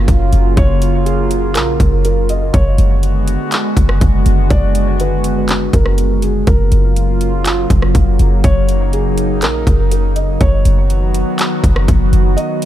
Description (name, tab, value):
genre	hip hop, atmospheric cloud-rap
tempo	122 BPM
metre	4/4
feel	half-time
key	F# major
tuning	A4 = 440 Hz
part	warbly tape-like pad	sustained chords	0.0-12.7 s	C#3 to F#4	-18 LUFS	equal	chorus, built-in reverb, sidechain pumping
part	clean 808-style bass	bass	0.0-12.4 s	F#1 to A#1	-13 LUFS	equal	none
part	trap drum kit	drums	0.1-12.7 s	handclaps, hi-hat, kick drum, rim click	-16 LUFS	equal	none
part	felt-muted upright piano	melody	0.6-12.7 s	G#4 to D#5	-22 LUFS	equal	analog delay
room	digital ambience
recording	echo-heavy mix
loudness	-11 LUFS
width	side -12 dB against mid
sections	0.0-12.7 A section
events	break 12.4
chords	0.0 F#maj7; 2.5 Bm6/F#; 6.5 F#maj7; 10.4 B/F#